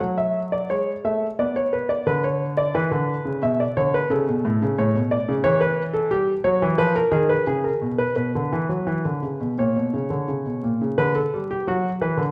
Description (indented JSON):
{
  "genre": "classical, baroque-style two-part invention for grand piano",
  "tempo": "88 BPM",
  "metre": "4/4",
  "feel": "straight",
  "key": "B minor",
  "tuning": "A4 = 435 Hz",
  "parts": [
    { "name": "warm concert grand piano", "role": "solo", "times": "0.0-12.3 s", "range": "A2 to F#5", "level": "-22 LUFS", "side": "equal", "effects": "none" }
  ],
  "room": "wet recital hall reverb, RT60 1.6 s",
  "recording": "vinyl crackle",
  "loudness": "-22 LUFS",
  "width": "mono",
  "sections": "0.0-11.0 A section; 11.0-12.3 B section",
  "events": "none",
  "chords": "0.0 F#m; 1.4 Bm; 2.7 E5; 4.1 A; 5.4 C#dim/E; 6.8 C#7; 8.2 F#sus4/B; 9.6 A#m; 11.0 Bm/D"
}